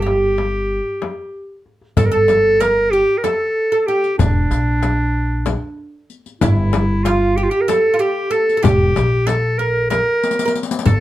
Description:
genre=Turkish makam ensemble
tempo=189 BPM (eighths)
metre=7/8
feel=straight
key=G makam nikriz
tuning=A4 = 441 Hz
part: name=clear clarinet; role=melody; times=0.0-11.0 s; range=D4 to Bb4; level=-18 LUFS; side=equal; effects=none
part: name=oud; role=second line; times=0.0-11.0 s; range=D4 to Bb4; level=-22 LUFS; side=right 3 dB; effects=none
part: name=upright bass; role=bass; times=0.0-11.0 s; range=E1 to Bb1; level=-19 LUFS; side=equal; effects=none
part: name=darbuka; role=percussion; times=0.1-11.0 s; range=none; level=-22 LUFS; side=left 1 dB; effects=none
part: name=frame drum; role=percussion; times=0.1-11.0 s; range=none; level=-22 LUFS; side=left 4 dB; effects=none
part: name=riq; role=percussion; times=2.0-11.0 s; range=none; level=-27 LUFS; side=left 6 dB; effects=none
room=light reverb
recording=none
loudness=-14 LUFS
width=side -14 dB against mid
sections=0.0-2.0 A section; 2.0-11.0 B section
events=drum fill 10.2-10.9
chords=none

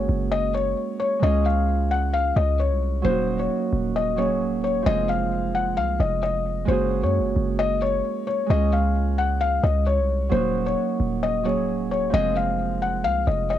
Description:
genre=hip hop, trap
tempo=132 BPM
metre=4/4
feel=half-time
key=F phrygian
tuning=A4 = 440 Hz
part: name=felt-muted upright piano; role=melody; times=0.0-13.6 s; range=C5 to Gb5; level=-24 LUFS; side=left 5 dB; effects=cassette tape
part: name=Celtic harp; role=accompaniment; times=0.0-13.6 s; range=F3 to Ab4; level=-26 LUFS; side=right 9 dB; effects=cassette tape
part: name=warm 808-style bass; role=bass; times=0.0-13.6 s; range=Db1 to Gb2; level=-24 LUFS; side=equal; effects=none
room=little or no reverb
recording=home recording on cassette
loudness=-20 LUFS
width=side -11 dB against mid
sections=0.0-13.6 A section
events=none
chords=0.0 Gbadd9; 1.2 Dbmaj7; 3.0 Ebm7; 4.9 Fm; 6.7 Gbadd9; 8.5 Dbmaj7; 10.3 Ebm7; 12.1 Fm

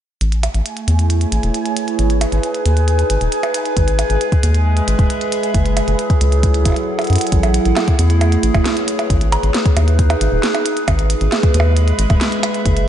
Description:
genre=IDM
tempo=135 BPM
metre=4/4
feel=straight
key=unclear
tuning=A4 = 444 Hz
part: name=warbly tape-like pad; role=sustained chords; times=0.7-12.9 s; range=F#3 to B5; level=-19 LUFS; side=right 1 dB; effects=chorus, built-in reverb, phaser
part: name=rubbery square bass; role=bass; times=0.2-12.9 s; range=D#1 to F#2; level=-15 LUFS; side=equal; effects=none
part: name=glitchy drum kit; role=drums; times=0.2-12.9 s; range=hi-hat, percussion blips, snare drum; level=-22 LUFS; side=right 2 dB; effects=studio reverb, tape echo
part: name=bubbling stepped-filter texture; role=texture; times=0.2-7.3 s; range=G#5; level=-28 LUFS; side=right 4 dB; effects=chorus, built-in reverb
part: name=electronic kick drum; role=drums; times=3.8-12.7 s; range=none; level=-16 LUFS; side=equal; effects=studio reverb
room=light reverb, digital ambience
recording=nothing above 10.5 kHz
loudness=-13 LUFS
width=side -10 dB against mid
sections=0.2-7.3 A section; 7.3-12.9 B section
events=filter sweep on analog synth bass 0.2-7.3; drum fill 7.1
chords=0.2 Amaj7; 2.0 G#m; 3.8 E/G#; 5.5 F#m7; 9.1 G#m; 10.9 E/G#

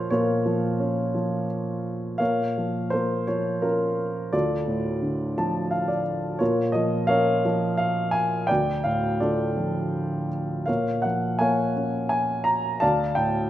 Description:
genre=classical, lyrical solo piano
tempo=85 BPM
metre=3/4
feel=rubato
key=unclear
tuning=A4 = 440 Hz
part: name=dark grand piano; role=solo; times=0.0-13.5 s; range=D2 to Bb5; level=-22 LUFS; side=equal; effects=none
room=moderate concert hall reverb, RT60 1.8 s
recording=minimal, uncompressed stereo recording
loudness=-22 LUFS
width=side -13 dB against mid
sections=0.0-2.2 A section; 2.2-13.5 A section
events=grand piano fill 5.0-6.4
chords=0.0 Bbm; 4.3 Dm; 6.4 Bbm; 8.5 Dm; 10.7 Bbm; 12.8 Dm

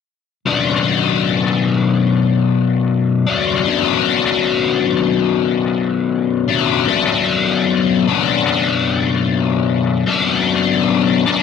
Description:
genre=rock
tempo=75 BPM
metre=4/4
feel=straight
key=B minor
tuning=A4 = 441 Hz
part: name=biting overdriven guitar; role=solo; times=0.5-11.4 s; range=B1 to D4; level=-14 LUFS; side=left 6 dB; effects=rotary speaker
room=moderate echo chamber reverb, RT60 2.0 s, digital ambience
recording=none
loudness=-14 LUFS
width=side -6 dB against mid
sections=0.5-6.9 A section; 6.9-11.4 B section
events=none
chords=0.5 Bm

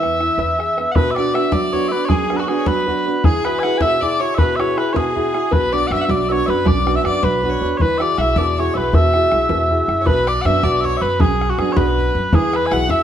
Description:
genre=celtic folk, Celtic jig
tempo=105 BPM (dotted quarters)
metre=6/8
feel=straight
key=unclear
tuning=A4 = 440 Hz
part: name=mellow small bagpipes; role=melody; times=0.0-13.0 s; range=F#4 to G#5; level=-20 LUFS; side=equal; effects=none
part: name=clear fiddle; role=second line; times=0.0-13.0 s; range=F#4 to F#5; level=-23 LUFS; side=left 1 dB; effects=none
part: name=clear upright piano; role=accompaniment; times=0.0-13.0 s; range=F#2 to B4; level=-20 LUFS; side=right 1 dB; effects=none
part: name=upright bass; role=bass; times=0.0-0.8, 5.5-13.0 s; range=B1 to F#2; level=-22 LUFS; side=equal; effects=none
part: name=bodhran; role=percussion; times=0.0-13.0 s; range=none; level=-20 LUFS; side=left 1 dB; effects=none
room=wet stone room reverb, RT60 1.0 s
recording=band playing live in one room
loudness=-15 LUFS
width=side -10 dB against mid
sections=1.0-10.1 A section; 10.1-13.0 A section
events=none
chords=0.0 E; 1.0 Bm; 3.2 Eadd9; 5.5 Bm; 7.8 Eadd9; 10.1 Bm; 12.3 Eadd9

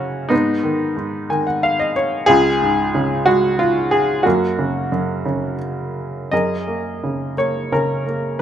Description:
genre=classical, lyrical solo piano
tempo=82-94 BPM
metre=3/4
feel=rubato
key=F# major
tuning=A4 = 436 Hz
part: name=bright baby grand piano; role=solo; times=0.0-8.4 s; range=C#2 to G#5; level=-16 LUFS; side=equal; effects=none
room=light reverb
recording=close, detailed microphones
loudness=-16 LUFS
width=side -9 dB against mid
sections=0.0-6.3 A section; 6.3-8.4 A section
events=grand piano fill 1.0-2.3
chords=0.3 G#m; 2.3 C#; 4.2 F#; 6.3 F#add9

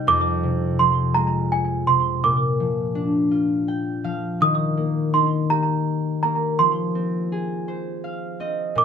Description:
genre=children's music, lullaby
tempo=55 BPM (dotted quarters)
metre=6/8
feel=straight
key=unclear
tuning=A4 = 439 Hz
part: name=concert harp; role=accompaniment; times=0.0-8.8 s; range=F2 to G5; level=-22 LUFS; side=left 2 dB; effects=none
part: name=small celesta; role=melody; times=0.1-8.8 s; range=Ab5 to Eb6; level=-21 LUFS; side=right 5 dB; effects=slapback echo
room=light reverb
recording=none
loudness=-19 LUFS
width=side -7 dB against mid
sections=0.0-8.8 A section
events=harp fill 3.3-4.4, 7.7-8.8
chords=0.1 Fm; 2.2 Bb; 4.4 Eb; 6.6 Fm

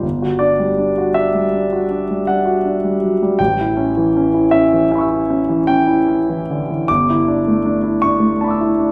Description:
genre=classical, impressionist solo piano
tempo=53 BPM (dotted quarters)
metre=9/8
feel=rubato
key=G lydian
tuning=A4 = 438 Hz
part: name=warm concert grand piano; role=solo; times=0.0-8.9 s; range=G1 to E6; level=-16 LUFS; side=equal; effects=none
room=wet recital hall reverb, RT60 1.5 s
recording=none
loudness=-16 LUFS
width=mono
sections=0.0-8.9 A section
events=none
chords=0.0 G5; 3.4 A9; 6.9 G69

